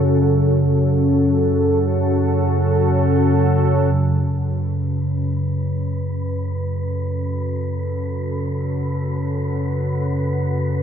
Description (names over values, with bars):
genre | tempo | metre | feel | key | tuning
dark ambient drone | free time | none | none | F# minor | A4 = 440 Hz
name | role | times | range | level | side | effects
deep dark ambient pad | sustained chords | 0.0-10.8 s | C#4 to F#5 | -22 LUFS | equal | chorus, built-in reverb
deep rumbling drone | drone | 0.0-10.8 s | F#2 to C#3 | -19 LUFS | equal | built-in reverb
wind-like tuned noise texture | texture | 4.7-10.8 s | B4 | -32 LUFS | left 1 dB | built-in reverb
room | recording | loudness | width
moderate spring reverb, RT60 2.1 s | none | -17 LUFS | side -8 dB against mid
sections
0.0-3.9 A section; 3.9-10.8 B section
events
none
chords
0.0 F#m